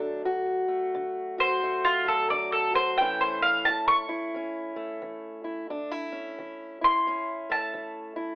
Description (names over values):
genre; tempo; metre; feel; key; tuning
acoustic country blues, solo or duo; 88 BPM; 4/4; swing 62% on 8ths; unclear; A4 = 441 Hz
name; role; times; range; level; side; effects
mandolin; melody; 0.0-8.4 s; F4 to C#6; -24 LUFS; equal; none
fingerpicked steel-string acoustic guitar; accompaniment; 0.0-8.4 s; D2 to F#4; -31 LUFS; equal; none
room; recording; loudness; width
light reverb; telephone sound; -24 LUFS; side -21 dB against mid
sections
0.0-8.4 A section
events
mandolin solo 0.0-8.4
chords
0.0 D; 3.0 A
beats
| 0.27 0.94 1.62 2.31 | 2.98 3.66 4.34 5.02 | 5.70 6.38 7.06 7.74